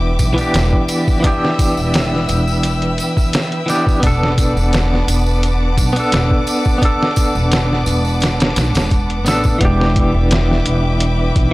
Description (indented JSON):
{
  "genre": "trip hop",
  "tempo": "86 BPM",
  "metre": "4/4",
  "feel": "swing 53% on 16ths",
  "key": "E minor",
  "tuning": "A4 = 441 Hz",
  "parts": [
    { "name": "clean electric guitar", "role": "accompaniment", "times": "0.0-11.5 s", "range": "E3 to A4", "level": "-18 LUFS", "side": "equal", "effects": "tremolo, tape echo" },
    { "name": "warm studio violin section", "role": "sustained chords", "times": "0.0-11.5 s", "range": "B4 to E6", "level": "-23 LUFS", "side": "equal", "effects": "none" },
    { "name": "upright bass", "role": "bass", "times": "0.0-11.5 s", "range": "E1 to B1", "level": "-17 LUFS", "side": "equal", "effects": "tube saturation" },
    { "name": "trip hop sampler-style drum kit", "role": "drums", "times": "0.2-11.5 s", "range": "hi-hat, kick drum, snare drum", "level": "-16 LUFS", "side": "equal", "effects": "none" },
    { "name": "tambourine", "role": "percussion", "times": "0.2-9.6 s", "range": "none", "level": "-30 LUFS", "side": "right 3 dB", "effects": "none" }
  ],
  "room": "small room ambience",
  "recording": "dry, gritty hardware recording, transformer saturation",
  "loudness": "-13 LUFS",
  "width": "side -20 dB against mid",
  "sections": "0.0-9.6 A section; 9.6-11.5 B section",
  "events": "none",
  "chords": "0.0 Em7; 4.0 Bm7/E; 9.6 Em7"
}